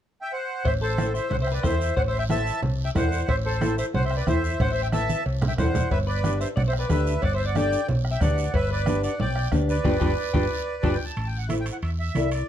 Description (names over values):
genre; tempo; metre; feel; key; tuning
latin, cumbia; 183 BPM; 4/4; straight; A dorian; A4 = 440 Hz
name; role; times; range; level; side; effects
accordion; melody; 0.2-12.5 s; A4 to A5; -29 LUFS; right 2 dB; light tremolo tuning
clean electric guitar; second line; 0.6-10.9 s; A4 to G5; -33 LUFS; left 6 dB; none
hollow-body short-scale fingered electric bass; bass; 0.7-12.4 s; G1 to E2; -26 LUFS; equal; none
bombo; percussion; 0.7-10.9 s; none; -29 LUFS; left 1 dB; none
congas; percussion; 0.7-12.3 s; none; -29 LUFS; right 3 dB; none
cowbell and timbales; percussion; 0.7-12.5 s; none; -35 LUFS; right 4 dB; none
guiro; percussion; 0.7-12.5 s; none; -42 LUFS; right 6 dB; none
nylon-string guitar; accompaniment; 1.0-12.4 s; D4 to D5; -29 LUFS; left 1 dB; none
room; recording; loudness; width
light reverb; dark, warm production; -22 LUFS; side -10 dB against mid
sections
0.7-11.2 A section; 11.2-12.5 B section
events
drum fill 4.9-5.9, 10.2-11.2; band accent 9.9-11.2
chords
0.0 N.C.; 0.7 Am; 5.9 G; 11.2 Am